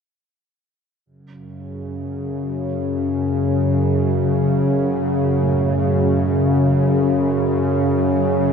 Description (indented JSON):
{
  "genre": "dark ambient drone",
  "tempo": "free time",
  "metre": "none",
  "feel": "none",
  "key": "F# minor",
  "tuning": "A4 = 440 Hz",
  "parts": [
    { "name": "bowed-like drone", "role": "drone", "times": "1.6-8.5 s", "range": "F#2 to C#3", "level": "-17 LUFS", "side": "equal", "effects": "built-in reverb" },
    { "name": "dark concert grand piano", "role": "arpeggios", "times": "4.8-8.5 s", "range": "A2 to F#4", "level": "-34 LUFS", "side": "right 2 dB", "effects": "none" }
  ],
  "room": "wet huge ambient reverb, RT60 8.8 s",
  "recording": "dark, warm production",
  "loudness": "-16 LUFS",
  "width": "side -6 dB against mid",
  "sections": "1.1-8.5 A section",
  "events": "none",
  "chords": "1.1 F#m"
}